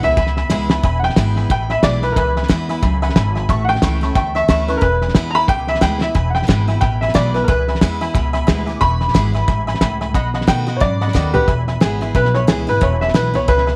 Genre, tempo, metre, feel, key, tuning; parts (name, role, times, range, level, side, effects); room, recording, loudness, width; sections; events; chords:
rockabilly; 180 BPM; 4/4; swing 59% on 8ths; E mixolydian; A4 = 436 Hz
clear upright piano; melody; 0.0-13.8 s; G4 to B5; -21 LUFS; equal
picked steel-string acoustic guitar; accompaniment; 0.0-13.8 s; E2 to F#4; -27 LUFS; equal
tack piano; accompaniment; 0.0-13.8 s; D#5 to D6; -27 LUFS; equal
upright bass; bass; 0.0-13.7 s; E1 to B2; -22 LUFS; equal
cloth-damped thuddy drum kit; drums; 0.0-13.7 s; hi-hat, kick drum, snare drum, toms; -20 LUFS; equal
light reverb, small room ambience; -16 LUFS; mono
0.8-11.5 A section; 11.5-13.8 B section
drum fill 0.5-0.8, 6.0, 11.1-11.5; honky-tonk piano fill 2.8-3.5
0.0 E; 3.5 A; 4.8 E; 10.1 B7; 11.5 E